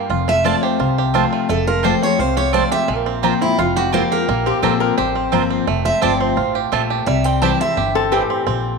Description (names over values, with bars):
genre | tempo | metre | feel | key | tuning
bluegrass | 172 BPM | 4/4 | straight | unclear | A4 = 440 Hz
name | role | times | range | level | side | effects
picked steel-string acoustic guitar | accompaniment | 0.0-8.8 s | F2 to F4 | -22 LUFS | left 13 dB | none
bluegrass banjo | arpeggios | 0.0-8.8 s | E3 to G4 | -21 LUFS | right 8 dB | none
upright bass | bass | 0.1-8.8 s | F1 to C2 | -23 LUFS | equal | none
picked steel-string acoustic guitar | melody | 0.3-7.9 s | E4 to A5 | -21 LUFS | right 2 dB | none
mandolin | stabs | 0.4-8.2 s | C4 to Bb5 | -24 LUFS | right 9 dB | none
lap resonator guitar | second line | 4.5-5.6, 8.0-8.4 s | G4 to C5 | -21 LUFS | left 11 dB | none
room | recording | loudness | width
wet spring reverb, RT60 2.3 s | 1960s-style stereo with parts hard left and right | -15 LUFS | side -4 dB against mid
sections
0.0-8.5 A section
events
none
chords
0.1 F; 2.9 Bbsus2; 7.1 C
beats
| 0.10 0.45 0.80 1.14 | 1.49 1.84 2.19 2.54 | 2.88 3.23 3.58 3.93 | 4.28 4.63 4.98 5.33 | 5.67 6.02 6.37 6.72 | 7.07 7.42 7.77 8.12 | 8.47